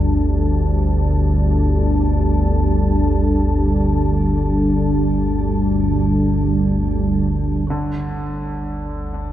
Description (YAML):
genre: dark ambient drone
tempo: free time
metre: none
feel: none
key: unclear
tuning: A4 = 440 Hz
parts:
  - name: dark analog pad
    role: sustained chords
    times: 0.0-9.3 s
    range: G3 to A5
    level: -20 LUFS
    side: equal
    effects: chorus
  - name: deep rumbling drone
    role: drone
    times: 0.0-9.3 s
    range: G1 to D2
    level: -18 LUFS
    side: equal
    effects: built-in reverb
  - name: clear baby grand piano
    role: arpeggios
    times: 7.7-9.3 s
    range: D3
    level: -26 LUFS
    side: right 1 dB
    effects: tape echo
  - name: bronze singing bowl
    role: texture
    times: 7.7-9.3 s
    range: A3 to A4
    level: -45 LUFS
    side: right 1 dB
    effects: none
room: wet cathedral reverb, RT60 5.1 s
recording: in a vast, echoing space, cassette tape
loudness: -16 LUFS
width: side -12 dB against mid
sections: 0.0-7.7 A section; 7.7-9.3 B section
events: none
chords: 0.0 Gsus2